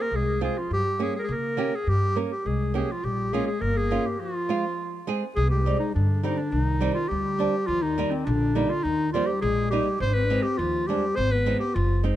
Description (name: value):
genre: klezmer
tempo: 103 BPM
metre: 2/4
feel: straight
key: F minor, C minor from 5.4 s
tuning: A4 = 439 Hz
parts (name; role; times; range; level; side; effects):
- clear clarinet; melody; 0.0-12.0 s; C4 to C5; -27 LUFS; equal; none
- trombone with bucket mute; second line; 0.0-12.0 s; D3 to D4; -31 LUFS; left 4 dB; none
- upright bass; bass; 0.1-12.1 s; F#1 to Db3; -26 LUFS; equal; none
- nylon-string guitar; accompaniment; 0.4-12.2 s; G3 to Bb4; -30 LUFS; right 4 dB; none
room: light reverb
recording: dark, warm production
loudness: -23 LUFS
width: side -12 dB against mid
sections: 0.0-5.4 A section; 5.4-12.2 B section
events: break 4.2-5.4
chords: 0.0 Fm; 0.7 Gdim; 3.0 Bbm; 4.2 Fm; 5.4 Cm; 7.7 Eb; 10.0 Ab